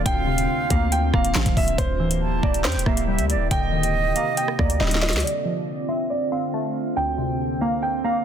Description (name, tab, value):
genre	hip hop, drill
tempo	139 BPM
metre	4/4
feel	half-time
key	D minor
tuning	A4 = 440 Hz
part	concert flute	second line	0.0-5.2 s	D5 to A5	-28 LUFS	right 8 dB	tape echo
part	glassy wavetable pluck	accompaniment	0.0-8.2 s	D2 to C4	-28 LUFS	right 1 dB	chorus, low-pass filter
part	warbly tape-like pad	sustained chords	0.0-8.2 s	C3 to Eb5	-28 LUFS	equal	chorus, built-in reverb, low-pass filter
part	hard-hitting 808-style bass	bass	0.0-5.2 s	D1 to F2	-24 LUFS	equal	none
part	dark grand piano	melody	0.1-8.2 s	C5 to G5	-27 LUFS	right 1 dB	low-pass filter, tape echo
part	drill drum kit	drums	0.1-5.3 s	handclaps, hi-hat, kick drum, rim click, snare drum	-23 LUFS	equal	none
room	light reverb, digital ambience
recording	dense, heavily limited modern master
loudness	-20 LUFS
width	side -9 dB against mid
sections	0.0-5.2 A section; 5.2-8.2 B section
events	drum fill 4.8-5.2; filter sweep 5.2-8.2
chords	0.1 Bbsus2/D; 1.8 C7/D; 3.5 Eb/D; 5.2 Dm7; 7.0 Bbsus2/D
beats	| 0.06 0.49 0.92 1.35 | 1.78 2.21 2.65 3.08 | 3.51 3.94 4.37 4.80 | 5.24 5.67 6.10 6.53 | 6.96 7.39 7.83